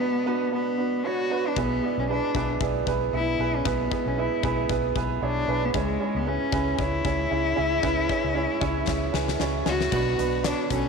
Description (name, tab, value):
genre	piano-driven pop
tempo	115 BPM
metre	4/4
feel	swing 56% on 16ths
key	unclear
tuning	A4 = 440 Hz
part	warm cello	melody	0.0-10.9 s	G#3 to F#4	-28 LUFS	left 6 dB	none
part	clear upright piano	accompaniment	0.0-10.9 s	B2 to E5	-27 LUFS	right 9 dB	none
part	vintage muted fingered electric bass	bass	1.6-10.9 s	B1 to C#2	-30 LUFS	left 2 dB	none
part	huge arena drum kit	drums	1.6-10.8 s	crash cymbal, handclaps, hi-hat, kick drum, snare drum	-32 LUFS	left 7 dB	none
part	percussive tonewheel organ	sustained chords	9.9-10.9 s	F#4 to B5	-38 LUFS	left 1 dB	fast rotary speaker
part	fingerpicked steel-string acoustic guitar	riff	9.9-10.9 s	B2 to F#4	-31 LUFS	right 12 dB	none
room	light reverb, studio reverb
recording	1960s-style stereo with parts hard left and right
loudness	-23 LUFS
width	side -5 dB against mid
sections	0.0-9.9 A section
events	drum fill 8.9-9.9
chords	0.0 Bm; 1.6 E/B; 5.7 C#m; 9.9 Bm